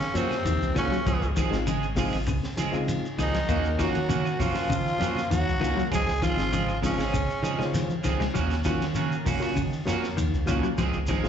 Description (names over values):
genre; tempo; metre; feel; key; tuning
afrobeat; 99 BPM; 4/4; straight; Eb dorian; A4 = 440 Hz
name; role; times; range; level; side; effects
growling tenor saxophone; melody; 0.0-8.0 s; C4 to Ab4; -30 LUFS; left 1 dB; slapback echo
trombone with bucket mute; second line; 0.0-8.0 s; C3 to Ab3; -36 LUFS; right 4 dB; slapback echo
fingered electric bass; bass; 0.0-11.3 s; Ab1 to Eb3; -30 LUFS; equal; none
crunchy breakbeat drum kit; drums; 0.0-11.3 s; hi-hat, kick drum, ride cymbal, snare drum; -34 LUFS; equal; none
shekere; percussion; 0.0-11.3 s; none; -37 LUFS; right 1 dB; slapback echo
overdriven reed electric piano; accompaniment; 0.1-11.3 s; Gb3 to C5; -34 LUFS; left 4 dB; slapback echo
electric guitar at the edge of break-up; stabs; 0.2-11.3 s; F3 to Ab4; -31 LUFS; right 8 dB; analog chorus, slapback echo
congas; percussion; 0.2-11.2 s; none; -37 LUFS; right 1 dB; none
claves; percussion; 0.3-11.2 s; none; -44 LUFS; left 5 dB; none
semi-hollow electric guitar; arpeggios; 0.5-11.2 s; C3 to Bb3; -32 LUFS; left 5 dB; slapback echo
room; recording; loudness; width
light reverb, studio reverb; live gig heard through the venue's PA, club reverb, nothing above 8.0 kHz; -24 LUFS; side -8 dB against mid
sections
0.0-11.3 A section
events
drum fill 7.7-8.4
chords
0.0 Ebm7; 1.1 Dbmaj7; 3.5 Ebm7; 5.9 Dbmaj7; 8.4 Ebm7; 10.8 Dbmaj7